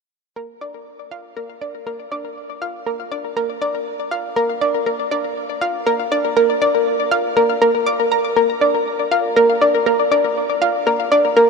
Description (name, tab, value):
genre	ambient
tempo	120 BPM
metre	4/4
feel	straight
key	unclear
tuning	A4 = 440 Hz
part	analog pluck	riff	0.4-11.5 s	Bb4 to D6	-16 LUFS	equal	chorus, ping-pong delay
room	wet huge ambient reverb, RT60 7.3 s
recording	none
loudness	-16 LUFS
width	side -4 dB against mid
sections	0.4-8.4 A section; 8.4-11.5 B section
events	fade-in on synth arpeggio sound 0.4-8.4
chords	none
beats	| 0.36 0.86 1.36 1.86 | 2.37 2.87 3.37 3.87 | 4.37 4.87 5.37 5.87 | 6.37 6.87 7.37 7.87 | 8.37 8.87 9.37 9.87 | 10.37 10.87 11.37